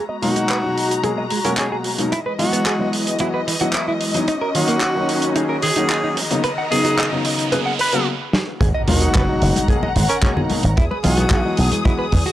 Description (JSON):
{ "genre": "nu-disco, nu disco", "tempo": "111 BPM", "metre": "4/4", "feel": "straight", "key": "G# minor", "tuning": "A4 = 443 Hz", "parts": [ { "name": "dark symphonic string section", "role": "sustained chords", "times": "0.0-12.3 s", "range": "D#3 to D#6", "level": "-26 LUFS", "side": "left 1 dB", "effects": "sidechain pumping" }, { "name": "direct-recorded clean electric guitar", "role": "riff", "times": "0.0-12.3 s", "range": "D#3 to F#5", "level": "-24 LUFS", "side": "right 2 dB", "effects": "wide subtle chorus, low-pass filter" }, { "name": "riser and impact", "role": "sound effects", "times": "2.0-10.8 s", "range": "none", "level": "-29 LUFS", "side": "right 1 dB", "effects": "none" }, { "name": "clear tenor saxophone", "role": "melody", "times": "0.2-11.6 s", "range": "C#4 to B4", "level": "-24 LUFS", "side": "equal", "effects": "analog delay" }, { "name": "warm baby grand piano", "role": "accompaniment", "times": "0.2-12.0 s", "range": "B2 to D#5", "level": "-23 LUFS", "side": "left 2 dB", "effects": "none" }, { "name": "damped 70s drum kit", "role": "drums", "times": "0.2-12.3 s", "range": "handclaps, hi-hat, snare drum", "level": "-24 LUFS", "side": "right 1 dB", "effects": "none" }, { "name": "kick drum", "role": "drums", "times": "0.5-12.2 s", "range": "none", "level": "-19 LUFS", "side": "equal", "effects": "high-pass filter on kick, high-pass filter on snare, high-pass filter on room" }, { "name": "slap bass with an envelope filter", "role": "bass", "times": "8.6-12.2 s", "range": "F#1 to E2", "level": "-18 LUFS", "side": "equal", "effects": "tube saturation" }, { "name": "congas", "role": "percussion", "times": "8.9-12.3 s", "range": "none", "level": "-25 LUFS", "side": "left 2 dB", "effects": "none" } ], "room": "small room ambience", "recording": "dry, gritty hardware recording, cassette tape", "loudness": "-16 LUFS", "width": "side -13 dB against mid", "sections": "0.0-8.6 A section; 8.6-12.3 B section", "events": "build-up 0.0-8.6; filter sweep on clean electric guitar 0.0-8.6; riser 2.0-8.1; stop 8.1-8.6; drum fill 8.3; drop 8.6-12.3; impact 8.6-10.8", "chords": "0.0 G#m9; 2.1 Emaj7; 4.3 D#m7; 6.2 Bmaj7; 8.6 G#m9; 10.8 Emaj7", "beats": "0.50 1.04 1.58 | 2.12 2.66 3.20 3.74 | 4.28 4.83 5.37 5.91 | 6.45 6.99 7.53 8.07 | 8.61 9.15 9.69 10.23 | 10.77 11.31 11.85" }